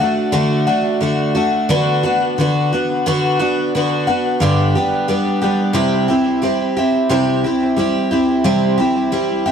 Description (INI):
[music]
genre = rock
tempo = 89 BPM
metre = 4/4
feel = straight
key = unclear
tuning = A4 = 441 Hz
[part]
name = picked twelve-string acoustic guitar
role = solo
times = 0.0-9.5 s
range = G2 to G4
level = -14 LUFS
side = equal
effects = tape echo
[sound]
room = moderate echo chamber reverb, RT60 1.3 s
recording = dark, warm production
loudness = -14 LUFS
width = side -7 dB against mid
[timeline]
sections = 0.0-7.1 A section; 7.1-9.5 B section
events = none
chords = 0.0 D; 1.7 Bm/D; 4.4 G; 5.8 C